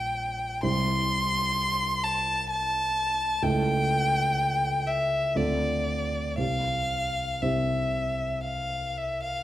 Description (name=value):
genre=classical, romantic duo for violin and grand piano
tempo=57-66 BPM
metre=3/4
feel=rubato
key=unclear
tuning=A4 = 439 Hz
part: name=warm violin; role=melody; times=0.0-9.4 s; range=D5 to C6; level=-26 LUFS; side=left 1 dB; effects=none
part: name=dark grand piano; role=accompaniment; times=0.0-9.4 s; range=Bb1 to D5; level=-29 LUFS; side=right 1 dB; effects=none
room=wet recital hall reverb, RT60 1.4 s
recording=none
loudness=-24 LUFS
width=side -13 dB against mid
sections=0.0-9.4 A section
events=none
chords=0.0 Gm7/Bb; 0.6 C; 3.4 A7/C#; 5.4 Dm7; 6.4 C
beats=| 0.63 1.56 2.49 | 3.42 4.36 5.35 | 6.38 7.42 8.45